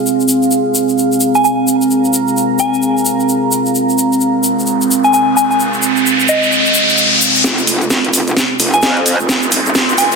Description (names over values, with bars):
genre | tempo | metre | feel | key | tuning
bass house | 130 BPM | 4/4 | swing 61% on 16ths | F minor | A4 = 440 Hz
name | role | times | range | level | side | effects
deep dark ambient pad | texture | 0.0-10.2 s | C4 to C6 | -14 LUFS | right 1 dB | chorus, built-in reverb
egg shaker | percussion | 0.1-10.2 s | none | -19 LUFS | left 2 dB | none
soft synth bell | melody | 1.4-10.2 s | Eb5 to Ab5 | -16 LUFS | left 1 dB | chorus, phaser, vintage 12-bit sampler grit, dub echo
riser | sound effects | 4.8-10.2 s | none | -15 LUFS | equal | none
metallic wobble bass | bass | 7.4-10.2 s | Eb1 to F2 | -17 LUFS | equal | distortion, chorus, tube saturation, high-pass filter
house drum kit | drums | 7.4-10.2 s | hi-hat, snare drum | -14 LUFS | right 1 dB | overdrive
room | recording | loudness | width
wet lush hall reverb, RT60 2.0 s | dense, heavily limited modern master | -10 LUFS | side -4 dB against mid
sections
0.0-7.4 A section; 7.4-10.2 B section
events
riser 4.8-7.4, 7.4-10.2; build-up 7.4-10.2; drum fill 7.4-10.2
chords
0.0 Fm